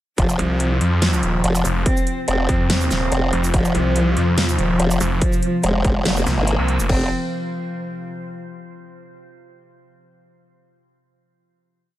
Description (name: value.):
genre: heavy wobble dubstep.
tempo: 143 BPM.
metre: 4/4.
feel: half-time.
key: unclear.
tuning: A4 = 438 Hz.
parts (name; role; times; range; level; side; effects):
warm cello; melody; 0.2-7.1 s; F3 to C4; -24 LUFS; equal; dub echo.
evolving wavetable pad; sustained chords; 1.5-7.1 s; C3 to C5; -27 LUFS; left 1 dB; chorus, built-in reverb, sidechain pumping.
formant-sweep wobble bass; bass; 0.2-7.1 s; F1 to Ab1; -20 LUFS; equal; chorus, overdrive.
dubstep drum kit; drums; 0.2-7.0 s; crash cymbal, hi-hat, shaker, snare drum; -25 LUFS; equal; none.
electronic kick drum; drums; 0.2-7.0 s; none; -20 LUFS; equal; distortion.
snarling distorted saw bass; bass; 0.4-6.9 s; Eb1 to F2; -19 LUFS; equal; distortion, overdrive.
room: little or no reverb.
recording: none.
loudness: -17 LUFS.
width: side -14 dB against mid.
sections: 0.2-6.9 drop; 6.9-8.6 final chord.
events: drop 0.2-6.9.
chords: 0.2 F5.